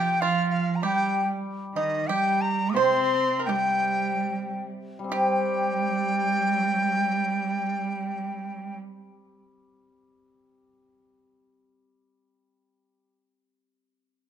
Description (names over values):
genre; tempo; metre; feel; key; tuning
chinese traditional, Chinese chamber ensemble; 70-102 BPM; 4/4; rubato; unclear; A4 = 440 Hz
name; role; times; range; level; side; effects
breathy mellow dizi; melody; 0.0-8.8 s; Eb5 to Eb6; -26 LUFS; left 2 dB; none
pipa; second line; 0.0-8.8 s; Eb4 to C5; -29 LUFS; right 6 dB; none
rich cello; second line; 0.0-8.8 s; Eb3 to C4; -29 LUFS; right 6 dB; none
hammered dulcimer; accompaniment; 0.0-13.1 s; C3 to G4; -30 LUFS; left 3 dB; none
room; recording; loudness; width
moderate recital hall reverb, RT60 1.6 s; minimal, uncompressed stereo recording; -23 LUFS; side -9 dB against mid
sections
0.0-5.1 A section; 5.1-8.5 B section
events
slowing down 0.0-5.1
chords
none